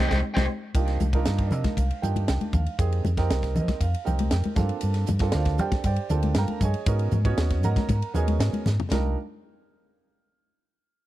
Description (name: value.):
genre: electric jazz fusion.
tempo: 118 BPM.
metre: 4/4.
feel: straight.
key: C minor.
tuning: A4 = 440 Hz.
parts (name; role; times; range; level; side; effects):
warm concert grand piano; accompaniment; 0.0-9.2 s; G3 to Bb5; -31 LUFS; right 7 dB; none.
hollow-body short-scale fingered electric bass; bass; 0.0-9.1 s; C2 to G3; -24 LUFS; equal; none.
tight funk drum kit; drums; 0.1-9.0 s; hi-hat, kick drum, ride cymbal, snare drum, toms; -28 LUFS; equal; none.
congas; percussion; 0.1-9.1 s; none; -30 LUFS; left 3 dB; none.
room: studio ambience.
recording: dry, close 1970s-style studio recording.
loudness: -22 LUFS.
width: side -15 dB against mid.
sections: 0.7-8.9 A section; 8.9-10.9 B section.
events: band accent 0.0-0.7; drum fill 0.2-0.7, 8.6.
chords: 0.0 Cm; 0.7 Cm11; 2.8 Fm11; 4.6 Gm11; 6.9 Abm11; 8.9 Cm11.